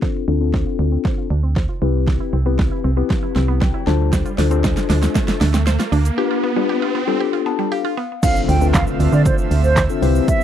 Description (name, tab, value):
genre	dance-pop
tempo	117 BPM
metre	4/4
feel	straight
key	D dorian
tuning	A4 = 440 Hz
part	mellow tine electric piano	accompaniment	0.0-10.4 s	C4 to A5	-22 LUFS	left 15 dB	sidechain pumping, low-pass filter
part	mallet-like synth pluck	arpeggios	0.0-8.0 s	G3 to C5	-28 LUFS	right 9 dB	chorus, sidechain pumping, low-pass filter, slapback echo
part	deep house drum kit	drums	0.0-10.4 s	crash cymbal, handclaps, hi-hat, kick drum, shaker, snare drum	-20 LUFS	right 1 dB	overdrive
part	riser and impact	sound effects	2.0-10.3 s	none	-27 LUFS	right 3 dB	none
part	solid FM bass	bass	0.3-10.2 s	C2 to D3	-17 LUFS	right 1 dB	sidechain pumping
part	mellow hollow silver concert flute	melody	8.2-10.4 s	C5 to G5	-21 LUFS	right 3 dB	sidechain pumping, slapback echo
part	airy breathy pad	sustained chords	8.2-10.4 s	C3 to E5	-24 LUFS	right 4 dB	chorus, sidechain pumping
room	little or no reverb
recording	dry, close 1970s-style studio recording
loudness	-15 LUFS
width	side -10 dB against mid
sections	0.0-8.2 A section; 8.2-10.4 B section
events	build-up 0.0-8.2; drum fill 0.0-6.2; filter sweep 0.0-8.2; riser 2.0-8.2; tine electric piano fill 3.4-4.1, 7.2-8.2; break 6.2-8.2; drop 8.2-10.4; impact 8.2-10.3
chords	0.0 Dm7; 1.8 Cmaj7; 3.9 Dm7; 6.2 G7; 8.2 Dm7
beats	| 0.02 0.54 1.05 1.56 | 2.08 2.59 3.10 3.61 | 4.13 4.64 5.15 5.67 | 6.18 6.69 7.20 7.72 | 8.23 8.74 9.26 9.77 | 10.28